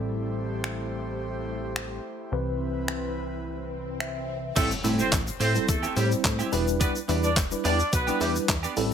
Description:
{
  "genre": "dance-pop",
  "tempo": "107 BPM",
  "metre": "4/4",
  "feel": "straight",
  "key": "A minor",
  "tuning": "A4 = 440 Hz",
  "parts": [
    { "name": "mellow tine electric piano", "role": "accompaniment", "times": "0.0-8.9 s", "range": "E3 to E5", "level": "-30 LUFS", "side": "left 1 dB", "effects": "medium stereo tremolo, sidechain pumping" },
    { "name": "airy breathy pad", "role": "sustained chords", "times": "0.0-4.5 s", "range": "C3 to C5", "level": "-36 LUFS", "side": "equal", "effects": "chorus, sidechain pumping" },
    { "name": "plucky analog bass", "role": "bass", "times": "0.0-8.9 s", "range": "E1 to A2", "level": "-30 LUFS", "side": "equal", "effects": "sidechain pumping" },
    { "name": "downlifter, swell and impact", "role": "sound effects", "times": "3.2-6.8 s", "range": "none", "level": "-41 LUFS", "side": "left 1 dB", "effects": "none" },
    { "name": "clean 12-bit digital drum machine", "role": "drums", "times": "0.6-8.9 s", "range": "crash cymbal, finger snaps, handclaps, hi-hat, kick drum, shaker, snare drum", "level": "-28 LUFS", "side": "equal", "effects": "none" },
    { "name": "clear horn section", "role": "melody", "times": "4.6-8.3 s", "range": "G3 to D5", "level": "-29 LUFS", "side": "right 1 dB", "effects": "ping-pong delay" },
    { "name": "twelve-string electric guitar", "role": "riff", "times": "4.6-8.9 s", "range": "B3 to G4", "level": "-33 LUFS", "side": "right 7 dB", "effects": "analog chorus" },
    { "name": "egg shaker", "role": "percussion", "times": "4.6-8.9 s", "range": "none", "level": "-39 LUFS", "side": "left 11 dB", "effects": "none" }
  ],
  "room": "little or no reverb",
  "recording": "none",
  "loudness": "-24 LUFS",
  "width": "side -8 dB against mid",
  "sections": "0.0-4.6 A section; 4.6-8.9 B section",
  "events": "swell 3.2-4.6; tine electric piano fill 3.7-4.6; drop 4.6-8.9; impact 4.6-6.8",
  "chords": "0.0 Am7; 2.3 Cmaj7; 4.6 Am7; 6.5 Em7",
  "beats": "| 0.08 0.64 1.20 1.76 | 2.32 2.88 3.44 4.00 | 4.56 5.12 5.68 6.25 | 6.81 7.37 7.93 8.49"
}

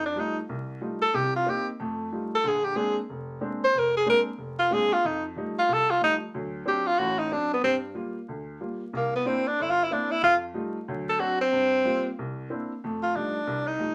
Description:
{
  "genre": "jazz",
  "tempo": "185 BPM",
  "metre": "4/4",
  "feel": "swing 62% on 8ths",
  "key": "F mixolydian",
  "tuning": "A4 = 442 Hz",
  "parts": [
    { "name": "breathy tenor saxophone", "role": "melody", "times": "0.0-13.9 s", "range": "Bb3 to C5", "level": "-26 LUFS", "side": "equal", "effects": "none" },
    { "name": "clear upright piano", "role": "accompaniment", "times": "0.0-13.9 s", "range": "F1 to F4", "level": "-35 LUFS", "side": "equal", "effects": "none" }
  ],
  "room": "moderate studio ambience, RT60 0.5 s",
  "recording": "vinyl crackle",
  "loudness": "-27 LUFS",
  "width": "mono",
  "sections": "0.0-12.8 A section; 12.8-13.9 B section",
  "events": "tenor saxophone solo 0.0-12.8",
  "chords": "0.0 F9; 1.1 Cm7; 1.8 F9; 2.4 Bb9; 5.0 F9; 6.3 D7; 7.6 Gm7; 8.9 C9; 10.2 F9; 10.9 D7; 11.5 Gm7; 12.2 C9; 12.8 F9",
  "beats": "0.17 0.49 0.82 | 1.14 1.47 1.79 2.12 | 2.44 2.76 3.09 3.41 | 3.74 4.06 4.39 4.71 | 5.04 5.36 5.68 6.01 | 6.33 6.66 6.98 7.31 | 7.63 7.96 8.28 8.61 | 8.93 9.25 9.58 9.90 | 10.23 10.55 10.88 11.20 | 11.52 11.85 12.17 12.50 | 12.82 13.15 13.47 13.80"
}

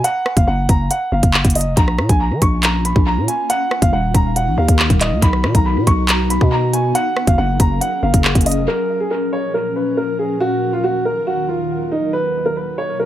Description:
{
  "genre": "hip hop, drill",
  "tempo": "139 BPM",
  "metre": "4/4",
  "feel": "half-time",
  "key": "Bb phrygian",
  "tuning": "A4 = 441 Hz",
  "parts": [
    { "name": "dark concert grand piano", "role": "melody", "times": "0.0-13.1 s", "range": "Eb4 to Db6", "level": "-19 LUFS", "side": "right 1 dB", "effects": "dub echo" },
    { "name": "growling 808-style bass", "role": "bass", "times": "0.0-8.7 s", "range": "Eb1 to F3", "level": "-18 LUFS", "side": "equal", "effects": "none" },
    { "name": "drill drum kit", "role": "drums", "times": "0.0-8.6 s", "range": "handclaps, hi-hat, kick drum, rim click", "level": "-16 LUFS", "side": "equal", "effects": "dub echo" },
    { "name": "ethereal airy pad", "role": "sustained chords", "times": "2.6-13.1 s", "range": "Eb2 to B4", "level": "-24 LUFS", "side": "left 2 dB", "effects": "ensemble chorus, built-in reverb" }
  ],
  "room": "little or no reverb",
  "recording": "echo-heavy mix",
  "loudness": "-14 LUFS",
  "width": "side -12 dB against mid",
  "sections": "0.0-8.7 A section; 8.7-13.1 B section",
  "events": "none",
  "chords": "0.0 Ebmadd9 (rootless); 1.8 Bbm; 3.5 Ebm; 5.2 B; 7.0 Gbadd9; 8.7 Bbm; 10.4 Ebm; 12.1 B",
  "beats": "| 0.04 0.48 0.91 1.34 | 1.77 2.20 2.63 3.07 | 3.50 3.93 4.36 4.79 | 5.22 5.66 6.09 6.52 | 6.95 7.38 7.81 8.25 | 8.68 9.11 9.54 9.97 | 10.40 10.84 11.27 11.70 | 12.13 12.56 12.99"
}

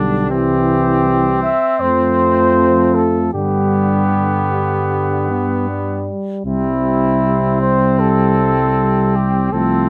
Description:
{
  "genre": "classical, brass quintet",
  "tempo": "78 BPM",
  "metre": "4/4",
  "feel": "straight",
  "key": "C major",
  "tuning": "A4 = 440 Hz",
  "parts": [
    { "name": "clear trumpet", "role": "second line", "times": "0.0-9.9 s", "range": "B3 to D4", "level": "-25 LUFS", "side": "equal", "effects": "none" },
    { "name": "clear euphonium", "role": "accompaniment", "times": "0.0-9.9 s", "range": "C3 to B3", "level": "-24 LUFS", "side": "equal", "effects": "none" },
    { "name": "mellow French horn", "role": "accompaniment", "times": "0.0-9.9 s", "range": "G3 to A3", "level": "-23 LUFS", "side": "equal", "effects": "none" },
    { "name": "dark tuba", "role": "bass", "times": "0.0-9.9 s", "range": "B1 to G2", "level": "-21 LUFS", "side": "equal", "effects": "none" },
    { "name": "mellow cornet", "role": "melody", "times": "0.3-9.9 s", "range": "E4 to E5", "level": "-21 LUFS", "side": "equal", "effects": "none" }
  ],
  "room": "light reverb",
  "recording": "close, detailed microphones",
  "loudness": "-16 LUFS",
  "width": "mono",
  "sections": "0.0-9.9 A section",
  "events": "none",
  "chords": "0.3 C; 1.8 F; 3.3 G; 6.5 C",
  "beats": "| 0.30 1.05 1.81 2.57 | 3.34 4.12 4.91 5.69 | 6.46 7.23 8.00 8.77 | 9.53"
}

